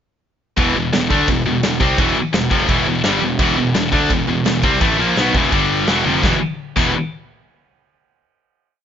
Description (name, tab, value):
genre	heavy metal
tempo	169 BPM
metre	4/4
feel	straight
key	unclear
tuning	A4 = 440 Hz
part	heavy high-gain guitar	riff	0.6-6.9 s	E2 to D4	-18 LUFS	left 6 dB	distortion
part	high-gain distorted guitar	riff	0.6-6.9 s	E2 to D4	-22 LUFS	right 14 dB	distortion
part	high-gain distorted guitar	riff	0.6-6.9 s	E2 to G4	-24 LUFS	right 3 dB	distortion
part	fuzz picked electric bass	bass	0.6-6.9 s	E1 to D2	-23 LUFS	equal	overdrive
part	big rock drum kit	drums	0.6-6.9 s	crash cymbal, kick drum, snare drum, toms	-21 LUFS	equal	none
room	small room ambience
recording	rough home demo mix, nothing above 7.5 kHz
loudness	-14 LUFS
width	side -9 dB against mid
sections	0.6-6.2 riff; 6.2-7.7 final chord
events	drum fill 6.1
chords	0.6 Em; 5.5 G5; 5.9 E5; 6.2 Em